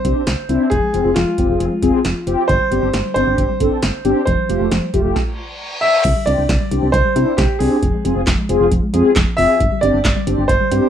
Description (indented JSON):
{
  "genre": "synth-pop",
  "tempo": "135 BPM",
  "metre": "4/4",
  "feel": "straight",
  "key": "C major",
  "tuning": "A4 = 439 Hz",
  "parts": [
    { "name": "warm concert grand piano", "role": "melody", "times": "0.0-10.9 s", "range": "F4 to E5", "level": "-19 LUFS", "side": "equal", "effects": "digital delay" },
    { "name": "mellow synth brass", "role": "accompaniment", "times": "0.0-10.9 s", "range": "A3 to A4", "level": "-18 LUFS", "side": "left 2 dB", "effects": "chorus" },
    { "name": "soft round pluck", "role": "arpeggios", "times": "0.0-10.9 s", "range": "D3 to F4", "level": "-25 LUFS", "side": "left 3 dB", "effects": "chorus, digital delay" },
    { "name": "solid FM bass", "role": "bass", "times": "0.0-10.8 s", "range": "F1 to C3", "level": "-20 LUFS", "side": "right 1 dB", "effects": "none" },
    { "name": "electro analog drum machine", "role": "drums", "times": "0.0-10.8 s", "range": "crash cymbal, handclaps, hi-hat, kick drum, snare drum", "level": "-20 LUFS", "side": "right 1 dB", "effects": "none" },
    { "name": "reverse cymbal", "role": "sound effects", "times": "5.4-6.0 s", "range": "none", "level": "-24 LUFS", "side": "left 1 dB", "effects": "none" }
  ],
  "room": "wet studio reverb, RT60 0.5 s",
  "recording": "rough home demo mix",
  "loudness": "-14 LUFS",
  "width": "side -9 dB against mid",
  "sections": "0.0-6.0 A section; 6.0-10.9 B section",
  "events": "reverse cymbal 5.4-6.0",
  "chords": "0.0 Csus2; 0.7 Fm; 2.5 Csus2/G; 4.3 Fadd9; 6.0 Csus2; 7.8 Fm; 9.6 Csus2/G"
}